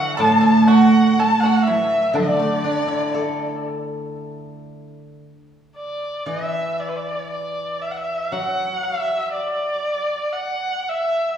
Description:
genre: chinese traditional, Chinese chamber ensemble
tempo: 56-62 BPM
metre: 2/4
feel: rubato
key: D gong mode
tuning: A4 = 442 Hz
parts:
  - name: warm erhu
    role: melody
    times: 0.0-11.4 s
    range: B4 to A5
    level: -22 LUFS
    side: equal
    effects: none
  - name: mellow hollow dizi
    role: second line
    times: 0.0-3.6 s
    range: D5 to B5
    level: -25 LUFS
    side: left 3 dB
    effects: none
  - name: pipa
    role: second line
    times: 0.0-3.6 s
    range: D4 to A4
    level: -25 LUFS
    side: right 4 dB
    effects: none
  - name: warm cello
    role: second line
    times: 0.0-3.7 s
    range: D3 to A3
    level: -17 LUFS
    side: right 2 dB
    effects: none
  - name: steel-string zither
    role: accompaniment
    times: 0.0-11.4 s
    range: A2 to A4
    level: -27 LUFS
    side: left 2 dB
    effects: none
  - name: woodblock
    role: percussion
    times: 0.2-3.4 s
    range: none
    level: -34 LUFS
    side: left 1 dB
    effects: none
room: wet recital hall reverb, RT60 1.8 s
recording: recorded in a church or concert hall, small room ambience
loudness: -18 LUFS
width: side -9 dB against mid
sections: 0.0-4.2 A section; 4.2-11.4 B section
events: none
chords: none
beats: | 0.21 1.19 | 2.15 3.14 | 4.18 5.24 | 6.28 7.32 | 8.34 9.36 | 10.38

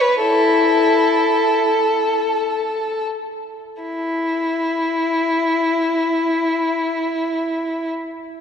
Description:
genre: classical, free, expressive piece for unaccompanied violin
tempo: free time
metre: none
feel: none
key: unclear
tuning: A4 = 440 Hz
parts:
  - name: rich violin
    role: solo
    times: 0.0-7.9 s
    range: E4 to B4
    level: -17 LUFS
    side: left 1 dB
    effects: none
room: wet church reverb, RT60 3.9 s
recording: dark, warm production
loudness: -16 LUFS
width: side -7 dB against mid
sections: 0.0-3.8 A section; 3.8-7.5 B section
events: slowing down 0.0-3.8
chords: none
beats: free time

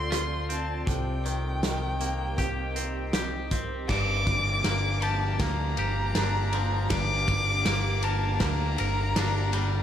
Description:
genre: post-rock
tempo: 79 BPM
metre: 4/4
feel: straight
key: G minor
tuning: A4 = 440 Hz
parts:
  - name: muted violin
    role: melody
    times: 0.0-9.8 s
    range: G5 to D6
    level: -31 LUFS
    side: left 2 dB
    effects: slapback echo, tape echo
  - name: shimmering ambient pad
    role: sustained chords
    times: 0.0-9.8 s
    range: D3 to Eb5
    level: -36 LUFS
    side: right 2 dB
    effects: chorus, built-in reverb, tremolo
  - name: twangy electric guitar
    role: arpeggios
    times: 0.0-9.8 s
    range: G2 to Bb4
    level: -34 LUFS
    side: left 3 dB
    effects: tape echo
  - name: picked electric bass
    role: bass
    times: 0.0-9.8 s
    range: G1 to D2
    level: -29 LUFS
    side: equal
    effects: none
  - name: loose indie drum kit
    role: drums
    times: 0.1-9.7 s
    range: crash cymbal, hi-hat, kick drum, ride cymbal, rim click, snare drum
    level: -30 LUFS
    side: equal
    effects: none
room: light reverb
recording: none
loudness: -25 LUFS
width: side -10 dB against mid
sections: 0.0-3.9 A section; 3.9-9.8 B section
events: build-up 3.9-9.8; drum fill 3.9-9.8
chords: 0.0 Dm7; 0.9 Cm7; 3.9 Gm7; 6.9 Gm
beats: 0.11 | 0.87 1.62 2.38 3.14 | 3.90 4.65 5.41 6.16 | 6.92 7.67 8.42 9.17

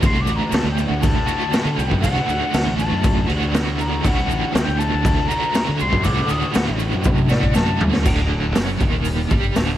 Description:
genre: psychedelic rock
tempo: 120 BPM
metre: 4/4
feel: straight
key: D major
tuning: A4 = 440 Hz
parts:
  - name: jazz flute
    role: melody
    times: 0.0-7.8 s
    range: D5 to Eb6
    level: -26 LUFS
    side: left 3 dB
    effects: slapback echo
  - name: overdriven electric guitar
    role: riff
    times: 0.0-9.8 s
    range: D2 to F#4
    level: -23 LUFS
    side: right 2 dB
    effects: tremolo
  - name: fuzz fingered electric bass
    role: bass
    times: 0.0-9.8 s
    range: D1 to D3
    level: -23 LUFS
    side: equal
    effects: overdrive
  - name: tanpura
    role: drone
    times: 0.0-9.8 s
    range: D2 to D4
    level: -33 LUFS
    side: equal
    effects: none
  - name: raw garage drum kit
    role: drums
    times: 0.0-9.7 s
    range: crash cymbal, hi-hat, kick drum, snare drum, toms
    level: -20 LUFS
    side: equal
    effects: none
  - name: maracas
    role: percussion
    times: 0.0-9.8 s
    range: none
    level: -40 LUFS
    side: left 19 dB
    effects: none
room: small room ambience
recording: none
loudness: -17 LUFS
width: side -12 dB against mid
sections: 0.0-8.1 A section; 8.1-9.8 B section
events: flute solo 0.0-8.1; drum fill 7.1-8.1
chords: 0.0 D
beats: | 0.04 0.54 1.04 1.54 | 2.04 2.55 3.05 3.55 | 4.05 4.55 5.05 5.55 | 6.05 6.56 7.06 7.56 | 8.06 8.56 9.06 9.56

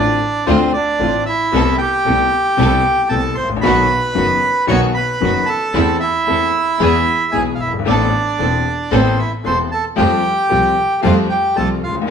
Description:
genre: tango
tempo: 114 BPM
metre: 4/4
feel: rubato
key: A minor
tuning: A4 = 439 Hz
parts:
  - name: bandoneon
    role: melody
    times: 0.0-12.0 s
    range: C4 to C#6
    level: -16 LUFS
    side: right 2 dB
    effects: none
  - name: bright grand piano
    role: accompaniment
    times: 0.0-12.1 s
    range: E1 to A4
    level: -19 LUFS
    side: left 5 dB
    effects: none
  - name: warm studio string section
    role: stabs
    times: 0.0-11.8 s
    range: G3 to A4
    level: -23 LUFS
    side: right 3 dB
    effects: none
  - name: rich double bass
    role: bass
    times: 0.0-12.1 s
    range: E1 to F2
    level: -22 LUFS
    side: right 1 dB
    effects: none
room: wet large studio reverb, RT60 1.1 s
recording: band playing live in one room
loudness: -13 LUFS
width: side -7 dB against mid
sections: 0.0-12.1 A section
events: none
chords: 0.0 Dm7; 1.5 Amadd9/C; 3.6 B; 5.7 Am/E; 6.8 E; 7.9 Amadd9; 10.0 Fadd9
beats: 0.47 1.00 | 1.53 2.06 2.59 3.12 | 3.64 4.17 4.69 5.22 | 5.75 6.27 6.80 7.33 | 7.87 8.40 8.93 9.46 | 9.98 10.51 11.04 11.57 | 12.09

